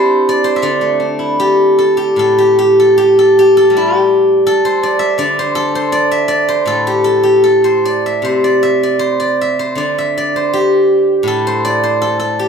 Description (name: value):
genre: chinese traditional, Chinese solo plucked strings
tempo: 75-83 BPM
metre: 2/4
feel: rubato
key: D shang mode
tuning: A4 = 439 Hz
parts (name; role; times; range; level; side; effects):
- steel-string zither; solo; 0.0-12.5 s; A2 to E5; -10 LUFS; equal; none
room: moderate large studio reverb, RT60 1.3 s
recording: band playing live in one room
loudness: -10 LUFS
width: side -6 dB against mid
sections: 0.0-2.2 A section; 2.2-12.5 B section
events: none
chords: none